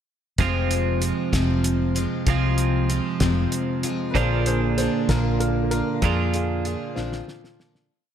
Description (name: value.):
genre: folk rock and heartland rock.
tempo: 64 BPM (dotted quarters).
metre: 6/8.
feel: straight.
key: F dorian.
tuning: A4 = 439 Hz.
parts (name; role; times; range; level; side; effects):
picked plugged-in steel-string acoustic guitar; accompaniment; 0.4-7.9 s; F2 to F4; -28 LUFS; left 6 dB; lush chorus.
twelve-string electric guitar; riff; 0.4-7.9 s; F2 to F4; -25 LUFS; right 8 dB; none.
hollow-body short-scale fingered electric bass; bass; 0.4-7.2 s; F1 to F2; -24 LUFS; equal; none.
cloth-damped thuddy drum kit; drums; 0.4-7.9 s; hi-hat, kick drum, snare drum; -26 LUFS; equal; none.
warm upright piano; second line; 4.1-7.6 s; C4 to C5; -29 LUFS; left 3 dB; tape echo.
room: light reverb.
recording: none.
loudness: -20 LUFS.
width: side -9 dB against mid.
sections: 0.4-7.9 verse.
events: fade-out 6.0-7.9; drum fill 7.0-7.9.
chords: 0.4 Fm; 4.1 Bb.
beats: | 0.39 1.33 | 2.27 3.21 | 4.15 5.08 | 6.02 6.96.